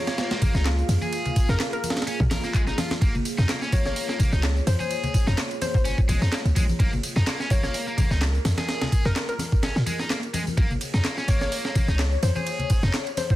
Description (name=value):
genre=breakbeat, breaks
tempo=127 BPM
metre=4/4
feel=swing 55% on 16ths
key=unclear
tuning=A4 = 440 Hz
part: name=hollow square pluck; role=melody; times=0.0-13.4 s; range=Bb4 to Db5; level=-34 LUFS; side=left 2 dB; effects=chorus, old record sound, dub echo
part: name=dark analog pad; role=sustained chords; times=0.0-13.4 s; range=Bb3 to F5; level=-34 LUFS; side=equal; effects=chorus, sidechain pumping
part: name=scooped high-gain guitar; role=riff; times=0.0-12.9 s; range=Ab3 to Bb4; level=-32 LUFS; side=equal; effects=distortion, dub echo
part: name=breakbeat sampler-style drum kit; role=drums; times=0.1-13.4 s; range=hi-hat, kick drum, ride cymbal, snare drum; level=-25 LUFS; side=equal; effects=none
part: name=house drum kit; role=drums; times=0.1-13.4 s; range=handclaps, ride cymbal, tambourine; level=-35 LUFS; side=equal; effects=none
part: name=congas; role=percussion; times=0.4-13.3 s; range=none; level=-32 LUFS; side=left 2 dB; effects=none
part: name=warm 808-style bass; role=bass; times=0.5-12.9 s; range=Bb1 to Bb2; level=-22 LUFS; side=equal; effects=none
room=light reverb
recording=dense, heavily limited modern master, vinyl crackle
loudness=-21 LUFS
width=side -15 dB against mid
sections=0.0-13.4 A section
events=none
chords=0.0 Bbm7